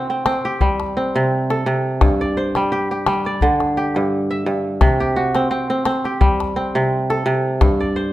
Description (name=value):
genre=west african traditional, West African string and xylophone music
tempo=86 BPM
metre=4/4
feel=swing 54% on 16ths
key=C lydian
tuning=A4 = 440 Hz
part: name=kora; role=arpeggios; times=0.0-8.1 s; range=G2 to E5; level=-18 LUFS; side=right 1 dB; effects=none
part: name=calabash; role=percussion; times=0.3-7.9 s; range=none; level=-19 LUFS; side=left 2 dB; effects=none
room=moderate recital hall reverb, RT60 1.4 s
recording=dark, warm production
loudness=-16 LUFS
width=side -15 dB against mid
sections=0.0-8.1 A section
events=none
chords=0.0 C5; 2.0 G5; 4.8 C5; 7.6 G5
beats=0.61 1.31 | 2.01 2.71 3.41 4.11 | 4.81 5.51 6.21 6.91 | 7.61